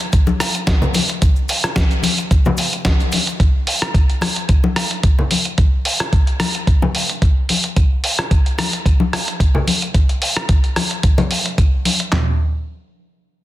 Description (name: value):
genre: nu-disco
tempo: 110 BPM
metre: 4/4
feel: swing 54% on 16ths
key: none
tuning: none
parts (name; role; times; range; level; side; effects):
- dusty soul sampler-style drum kit; drums; 0.0-12.1 s; hi-hat, rim click, snare drum; -20 LUFS; equal; soft clipping on snare
- dusty soul sampler-style drum kit; drums; 0.1-12.3 s; handclaps, kick drum, snare drum, toms; -14 LUFS; equal; none
- maracas and congas; percussion; 0.1-12.0 s; none; -22 LUFS; left 4 dB; none
room: light reverb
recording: dense, heavily limited modern master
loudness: -14 LUFS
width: side -15 dB against mid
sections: 0.0-12.1 A section; 12.1-13.4 B section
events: none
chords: none